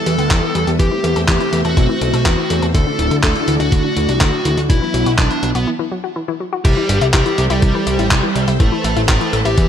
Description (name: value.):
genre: italo disco.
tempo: 123 BPM.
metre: 4/4.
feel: straight.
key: unclear.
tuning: A4 = 439 Hz.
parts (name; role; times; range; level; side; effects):
dark smooth lead guitar; melody; 0.0-9.7 s; G3 to A4; -20 LUFS; right 1 dB; overdrive, ping-pong delay.
string machine, full ensemble; sustained chords; 0.0-9.7 s; F#3 to A5; -23 LUFS; equal; ensemble chorus.
analog pluck; arpeggios; 0.0-9.6 s; D3 to A4; -24 LUFS; left 6 dB; chorus, vintage 12-bit sampler grit, tape echo.
fat analog bass; bass; 0.1-9.7 s; D1 to E2; -18 LUFS; equal; none.
dusty soul sampler-style drum kit; drums; 0.1-9.7 s; crash cymbal, handclaps, hi-hat; -21 LUFS; equal; gated reverb.
electronic kick drum; drums; 0.3-9.7 s; none; -15 LUFS; equal; none.
room: digital ambience.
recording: none.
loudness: -13 LUFS.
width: side -9 dB against mid.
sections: 0.0-6.6 A section; 6.6-9.7 B section.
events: break 5.7-6.6.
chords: 0.0 Em; 0.8 Am/E; 2.7 Dadd9; 4.7 Bsus4; 6.6 C6; 8.6 Amadd9.